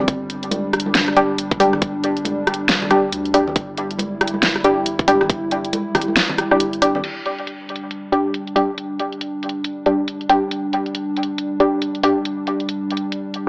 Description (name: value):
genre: deep dubstep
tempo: 138 BPM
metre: 4/4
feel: swing 60% on 16ths, half-time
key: unclear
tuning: A4 = 441 Hz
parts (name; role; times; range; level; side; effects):
- dark analog pad; sustained chords; 0.0-13.5 s; G3 to E4; -24 LUFS; equal; chorus
- soft dub sub bass; bass; 0.0-7.0 s; G1 to D2; -34 LUFS; equal; none
- congas; percussion; 0.0-7.0 s; none; -29 LUFS; equal; dub echo
- dubstep drum kit; drums; 0.1-13.4 s; crash cymbal, hi-hat, rim click, snare drum; -20 LUFS; equal; overdrive, low-pass filter on hats, low-pass filter on snare, low-pass filter on cymbals
- electronic kick drum; drums; 0.1-6.1 s; none; -19 LUFS; equal; none
- filtered dub chord stab; stabs; 1.2-12.2 s; G3 to G4; -18 LUFS; equal; chorus, dub echo
room: moderate spring reverb, RT60 1.6 s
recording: dry, gritty hardware recording, AM radio sound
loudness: -17 LUFS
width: side -27 dB against mid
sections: 0.0-7.0 A section; 7.0-13.5 B section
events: kick drops out 6.2-7.0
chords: 0.0 G5